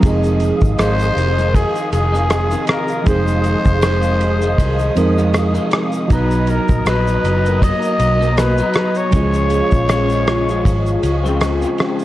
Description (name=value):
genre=indie pop, bedroom pop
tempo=79 BPM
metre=4/4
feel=swing 55% on 16ths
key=unclear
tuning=A4 = 440 Hz
part: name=electric guitar through a small old amp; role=accompaniment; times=0.0-12.0 s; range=F2 to Eb4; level=-21 LUFS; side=left 2 dB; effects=ensemble chorus, warbly pitch drift
part: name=reed electric piano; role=accompaniment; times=0.0-12.0 s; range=F3 to Bb5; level=-22 LUFS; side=right 4 dB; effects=cassette tape
part: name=hollow soft pad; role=sustained chords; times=0.0-12.0 s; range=Ab4 to Eb6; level=-26 LUFS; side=right 2 dB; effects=ensemble chorus
part: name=vintage muted fingered electric bass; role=bass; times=0.0-11.6 s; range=F1 to F2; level=-18 LUFS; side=equal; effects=none
part: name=damped 70s drum kit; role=drums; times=0.0-12.0 s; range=kick drum, ride cymbal, rim click, shaker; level=-20 LUFS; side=equal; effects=none
part: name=egg shaker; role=percussion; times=0.1-12.0 s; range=none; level=-44 LUFS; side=right 5 dB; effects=none
part: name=growling trumpet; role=melody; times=0.8-11.2 s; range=Ab4 to Eb5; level=-21 LUFS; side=left 1 dB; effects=wide subtle chorus
room=light reverb, studio reverb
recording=cassette tape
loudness=-13 LUFS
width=side -15 dB against mid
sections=0.0-12.0 A section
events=none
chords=0.0 Fm7; 6.1 Cbmaj7; 9.1 Dbmaj7